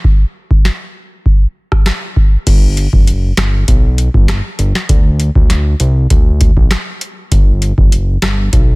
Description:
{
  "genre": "dancehall",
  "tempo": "99 BPM",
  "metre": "4/4",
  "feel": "straight",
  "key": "unclear",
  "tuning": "A4 = 440 Hz",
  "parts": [
    { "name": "booming analog drum machine", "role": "drums", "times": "0.0-8.7 s", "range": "crash cymbal, hi-hat, kick drum, rim click, snare drum", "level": "-10 LUFS", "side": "equal", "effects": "soft clipping on snare" },
    { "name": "fat analog bass", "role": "bass", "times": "2.5-8.8 s", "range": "F#1 to D2", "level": "-13 LUFS", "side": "equal", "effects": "none" }
  ],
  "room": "little or no reverb",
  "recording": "dense, heavily limited modern master",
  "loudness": "-10 LUFS",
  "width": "side -26 dB against mid",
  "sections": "0.0-2.5 A section; 2.5-8.8 B section",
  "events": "none",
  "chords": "none"
}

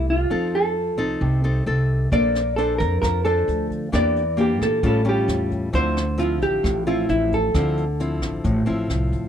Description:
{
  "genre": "bossa nova",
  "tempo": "133 BPM",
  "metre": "4/4",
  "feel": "straight",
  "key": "D minor",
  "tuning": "A4 = 440 Hz",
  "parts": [
    { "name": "hollow-body jazz guitar", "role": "melody", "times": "0.0-8.9 s", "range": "E4 to D5", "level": "-22 LUFS", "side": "right 1 dB", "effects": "none" },
    { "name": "nylon-string guitar", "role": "accompaniment", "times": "0.0-9.3 s", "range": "A2 to C5", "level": "-24 LUFS", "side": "left 2 dB", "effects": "none" },
    { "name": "upright bass", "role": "bass", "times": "0.0-9.3 s", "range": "A1 to Bb2", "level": "-24 LUFS", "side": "right 1 dB", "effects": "none" },
    { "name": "jazz brush drum kit", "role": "drums", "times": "2.1-9.2 s", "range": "hi-hat, kick drum, rim click", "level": "-28 LUFS", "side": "right 1 dB", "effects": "none" }
  ],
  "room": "little or no reverb",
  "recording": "none",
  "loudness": "-19 LUFS",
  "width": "side -9 dB against mid",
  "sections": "0.0-9.3 A section",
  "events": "none",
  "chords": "0.3 F7; 2.1 Bbmaj9; 3.9 Em7b5; 4.8 A7b13; 5.7 Dm9"
}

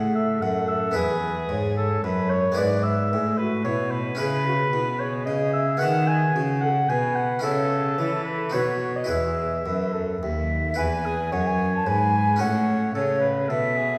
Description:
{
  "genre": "classical, baroque-style sonata movement with continuo",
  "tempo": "111 BPM",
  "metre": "3/4",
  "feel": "straight",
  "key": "E major from 4.2 s",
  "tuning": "A4 = 440 Hz",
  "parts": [
    { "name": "mellow concert flute", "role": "melody", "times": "0.0-14.0 s", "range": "E4 to A5", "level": "-30 LUFS", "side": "equal", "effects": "none" },
    { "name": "mellow oboe", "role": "second line", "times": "0.0-14.0 s", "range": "G#4 to G#5", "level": "-29 LUFS", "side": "equal", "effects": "none" },
    { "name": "harpsichord", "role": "accompaniment", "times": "0.0-14.0 s", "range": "D#2 to B4", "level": "-32 LUFS", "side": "equal", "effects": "none" },
    { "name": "clear cello", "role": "bass", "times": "0.0-14.0 s", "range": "D#2 to E3", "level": "-28 LUFS", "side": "equal", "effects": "none" }
  ],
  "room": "wet recital hall reverb, RT60 1.9 s",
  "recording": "heard from further back in the room",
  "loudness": "-24 LUFS",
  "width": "mono",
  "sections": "0.0-10.8 A section; 10.8-14.0 B section",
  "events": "none",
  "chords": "0.0 A; 1.0 E; 2.6 E/G#; 4.2 C#m; 5.8 B; 7.4 A/C#; 8.5 B; 9.1 E; 12.4 F#m/A"
}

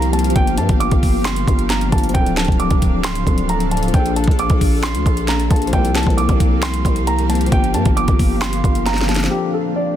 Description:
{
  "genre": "hip hop, trap",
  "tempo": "134 BPM",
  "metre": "4/4",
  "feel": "half-time",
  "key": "D minor",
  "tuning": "A4 = 435 Hz",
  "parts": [
    { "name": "dark baby grand piano", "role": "melody", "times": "0.0-10.0 s", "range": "G4 to D6", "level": "-23 LUFS", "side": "right 3 dB", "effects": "low-pass filter, digital delay" },
    { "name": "tine electric piano", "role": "accompaniment", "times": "0.0-10.0 s", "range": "F3 to A4", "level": "-23 LUFS", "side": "left 7 dB", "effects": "low-pass filter" },
    { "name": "granular cloud pad", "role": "sustained chords", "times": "0.0-10.0 s", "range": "D2 to F5", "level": "-25 LUFS", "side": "right 1 dB", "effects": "built-in reverb" },
    { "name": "growling 808-style bass", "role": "bass", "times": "0.0-9.3 s", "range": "D1 to G2", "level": "-20 LUFS", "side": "equal", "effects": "none" },
    { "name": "trap drum kit", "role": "drums", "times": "0.0-9.3 s", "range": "handclaps, hi-hat, kick drum, snare drum", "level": "-18 LUFS", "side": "equal", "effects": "none" }
  ],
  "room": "digital ambience",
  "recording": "dense, heavily limited modern master",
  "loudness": "-14 LUFS",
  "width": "side -11 dB against mid",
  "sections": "0.0-9.3 A section",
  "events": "drum fill 8.9-9.3",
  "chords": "0.4 Gm7; 2.1 Dm7; 3.9 Bbmaj7; 5.7 C7sus4; 7.5 Gm7; 9.3 Dm7"
}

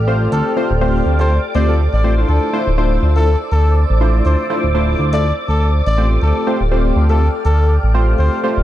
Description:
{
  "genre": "deep house",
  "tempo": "122 BPM",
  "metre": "4/4",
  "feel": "swing 56% on 16ths",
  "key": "D minor",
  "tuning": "A4 = 441 Hz",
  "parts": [
    { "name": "dark analog pad", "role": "sustained chords", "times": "0.0-8.6 s", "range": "A4 to F6", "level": "-25 LUFS", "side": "right 1 dB", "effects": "chorus, vintage 12-bit sampler grit" },
    { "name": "smooth synth bass", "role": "bass", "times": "0.0-8.6 s", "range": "D1 to D2", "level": "-14 LUFS", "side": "equal", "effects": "tube saturation" },
    { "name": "soft string machine", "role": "texture", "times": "0.0-8.6 s", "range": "D5 to D6", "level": "-28 LUFS", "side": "left 1 dB", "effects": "phaser, ensemble chorus" },
    { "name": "warm analog keys", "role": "stabs", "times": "0.1-8.6 s", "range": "A3 to C5", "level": "-20 LUFS", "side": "equal", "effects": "chorus, tape echo" },
    { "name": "trumpet with bucket mute", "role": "melody", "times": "0.3-8.4 s", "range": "A4 to D5", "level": "-23 LUFS", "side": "left 1 dB", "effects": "tape echo" }
  ],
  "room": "little or no reverb",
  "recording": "dark, warm production",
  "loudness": "-13 LUFS",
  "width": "side -13 dB against mid",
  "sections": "0.0-8.6 A section",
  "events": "none",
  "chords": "0.0 Dm9"
}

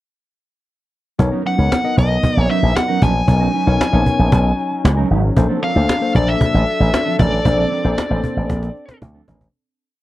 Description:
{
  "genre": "early-eighties boogie funk",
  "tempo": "115 BPM",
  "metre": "4/4",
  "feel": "straight",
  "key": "unclear",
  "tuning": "A4 = 439 Hz",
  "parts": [
    { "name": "tine electric piano", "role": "accompaniment", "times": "1.2-8.7 s", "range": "A#3 to D#5", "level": "-22 LUFS", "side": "left 4 dB", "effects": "none" },
    { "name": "warm analog pad", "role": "sustained chords", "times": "1.2-9.5 s", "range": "F#3 to A4", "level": "-25 LUFS", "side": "equal", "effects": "chorus" },
    { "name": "mellow electric guitar", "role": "riff", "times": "1.2-9.4 s", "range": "E#3 to B4", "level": "-24 LUFS", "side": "right 7 dB", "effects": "wide subtle chorus" },
    { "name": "slap bass with an envelope filter", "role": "bass", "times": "1.2-9.5 s", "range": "G#1 to D2", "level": "-16 LUFS", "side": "equal", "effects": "none" },
    { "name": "cajon", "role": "drums", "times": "1.2-9.5 s", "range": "none", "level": "-19 LUFS", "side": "equal", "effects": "none" },
    { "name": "nasal lead guitar with a parked wah", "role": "melody", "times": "1.5-9.0 s", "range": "D5 to G#5", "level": "-21 LUFS", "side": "left 2 dB", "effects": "overdrive, slapback echo" }
  ],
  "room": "little or no reverb",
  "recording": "dry, close 1970s-style studio recording",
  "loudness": "-14 LUFS",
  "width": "side -15 dB against mid",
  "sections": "1.2-9.5 verse",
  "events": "fade-out 7.5-9.5; drum fill 8.5-9.5",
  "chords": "1.2 Bmaj9; 5.4 A#maj9"
}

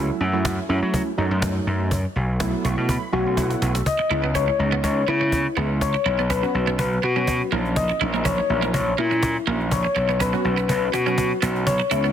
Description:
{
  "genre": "dance-pop",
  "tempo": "123 BPM",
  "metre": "4/4",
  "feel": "straight",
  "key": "unclear",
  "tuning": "A4 = 443 Hz",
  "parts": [
    { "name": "warm analog keys", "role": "accompaniment", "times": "0.0-12.1 s", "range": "F#3 to C#6", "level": "-27 LUFS", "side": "right 2 dB", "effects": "chorus" },
    { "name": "gritty slap bass", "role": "bass", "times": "0.0-12.1 s", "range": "A#1 to F#3", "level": "-23 LUFS", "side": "equal", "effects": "overdrive" },
    { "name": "cajon", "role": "drums", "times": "0.4-12.1 s", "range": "none", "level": "-27 LUFS", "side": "equal", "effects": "none" },
    { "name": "soft struck synth lead", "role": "melody", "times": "3.1-12.1 s", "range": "E4 to D#5", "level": "-24 LUFS", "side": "left 4 dB", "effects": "chorus, ping-pong delay" },
    { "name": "twelve-string electric guitar", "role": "riff", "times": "4.0-12.1 s", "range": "A#3 to E4", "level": "-28 LUFS", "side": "right 8 dB", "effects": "lush chorus" }
  ],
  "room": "light reverb, digital ambience",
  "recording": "dense, heavily limited modern master, high-pass filter",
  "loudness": "-19 LUFS",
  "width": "side -9 dB against mid",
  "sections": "0.0-3.9 A section; 3.9-12.1 B section",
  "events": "synth keys fill 2.4-3.9; drum fill 3.4-3.9, 3.9-12.1; build-up 3.9-12.1",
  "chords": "0.0 F#m7; 1.9 B7sus4; 3.9 C#m7; 5.8 Bsus2; 7.5 F#7/A#; 9.7 Bsus2"
}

